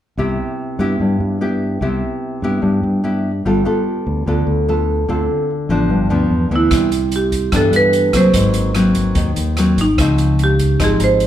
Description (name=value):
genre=bossa nova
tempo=147 BPM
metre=4/4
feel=straight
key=C major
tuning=A4 = 440 Hz
part: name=nylon-string guitar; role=accompaniment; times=0.2-11.3 s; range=G2 to A4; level=-17 LUFS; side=left 1 dB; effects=none
part: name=fingered electric bass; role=bass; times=0.2-11.3 s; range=G1 to G2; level=-19 LUFS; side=equal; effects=none
part: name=marimba with medium hard mallets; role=melody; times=6.6-11.3 s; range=Eb4 to C5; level=-16 LUFS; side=right 3 dB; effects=none
part: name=open jazz drum kit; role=drums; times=6.7-11.3 s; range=hi-hat, kick drum, rim click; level=-22 LUFS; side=equal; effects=none
room=wet large studio reverb, RT60 1.1 s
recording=heard from further back in the room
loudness=-14 LUFS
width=side -11 dB against mid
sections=0.2-6.7 A section; 6.7-11.3 B section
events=none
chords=0.2 Cmaj7; 3.4 G9; 5.1 Dm7; 5.9 G7; 6.7 Cmaj9; 8.3 Ab9; 10.0 Dbmaj9